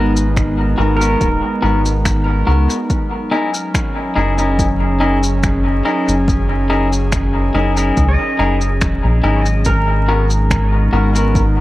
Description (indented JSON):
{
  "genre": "ambient dub",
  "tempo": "71 BPM",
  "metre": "4/4",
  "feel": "swing 53% on 16ths",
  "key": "unclear",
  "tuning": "A4 = 435 Hz",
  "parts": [
    { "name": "airy breathy pad", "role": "sustained chords", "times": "0.0-11.6 s", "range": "F#3 to G#4", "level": "-20 LUFS", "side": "right 1 dB", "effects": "chorus" },
    { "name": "pedal steel guitar", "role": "arpeggios", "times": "0.0-11.6 s", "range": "A#4 to D#5", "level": "-25 LUFS", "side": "right 2 dB", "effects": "dub echo" },
    { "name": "twangy electric guitar", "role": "stabs", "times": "0.0-11.4 s", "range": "B3 to A#4", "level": "-20 LUFS", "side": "left 2 dB", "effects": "dub echo" },
    { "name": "round analog bass", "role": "bass", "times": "0.0-11.6 s", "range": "D#1 to C#2", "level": "-16 LUFS", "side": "equal", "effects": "none" },
    { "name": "shaker and finger snaps", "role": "drums", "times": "0.2-11.5 s", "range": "none", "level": "-26 LUFS", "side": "left 1 dB", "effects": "dub echo" },
    { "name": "electronic kick drum", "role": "drums", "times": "0.4-11.5 s", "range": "none", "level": "-19 LUFS", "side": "equal", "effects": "overdrive" }
  ],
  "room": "light reverb, small room ambience",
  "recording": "vinyl crackle",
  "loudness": "-13 LUFS",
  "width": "side -16 dB against mid",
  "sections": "0.0-11.6 A section",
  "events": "none",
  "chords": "0.0 G#m9; 2.9 F#13; 9.7 G#m9"
}